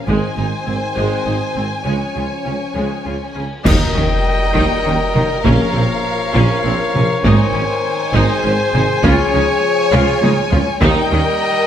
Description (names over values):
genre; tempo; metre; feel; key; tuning
cinematic, epic orchestral film score; 67 BPM (dotted quarters); 6/8; straight; Eb mixolydian; A4 = 440 Hz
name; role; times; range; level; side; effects
dark symphonic violin section; melody; 0.0-11.7 s; F5 to Ab5; -24 LUFS; left 3 dB; none
dark symphonic violin section; second line; 0.0-11.7 s; Bb4 to Db5; -24 LUFS; left 3 dB; none
warm French horn section; sustained chords; 0.0-11.7 s; Eb3 to Bb4; -23 LUFS; left 3 dB; none
clear symphonic viola section; accompaniment; 0.1-11.2 s; Ab3 to F4; -24 LUFS; right 1 dB; none
clear symphonic double bass section; bass; 0.1-11.2 s; Ab1 to Eb2; -22 LUFS; right 2 dB; none
rich symphonic cello section; bass; 0.1-11.2 s; Ab2 to Eb3; -22 LUFS; right 2 dB; none
warm tuba; bass; 0.1-11.2 s; Ab1 to Eb2; -24 LUFS; right 3 dB; none
solo taiko drums; drums; 0.1-11.4 s; none; -19 LUFS; equal; none
cymbal swell, clash cymbals and concert bass drum; percussion; 0.1-4.8 s; none; -22 LUFS; equal; none
clear trumpet; stabs; 3.7-11.7 s; C5 to Eb5; -21 LUFS; equal; none
impact; sound effects; 3.8-5.5 s; none; -28 LUFS; equal; none
timpani; percussion; 5.5-6.3 s; Bb2; -24 LUFS; left 1 dB; none
room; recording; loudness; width
moderate scoring stage reverb, RT60 1.8 s; none; -13 LUFS; side -9 dB against mid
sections
0.0-3.7 A section; 3.7-11.7 B section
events
band accent 3.7-4.3; impact 3.7-5.5; drum fill 9.9-10.8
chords
0.1 Ab; 1.9 Db; 3.7 Eb; 5.5 Bbm; 7.2 Ab; 9.0 Db; 10.8 Eb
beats
| 0.08 0.97 | 1.87 2.76 | 3.66 4.55 | 5.45 6.35 | 7.24 8.14 | 9.03 9.93 | 10.82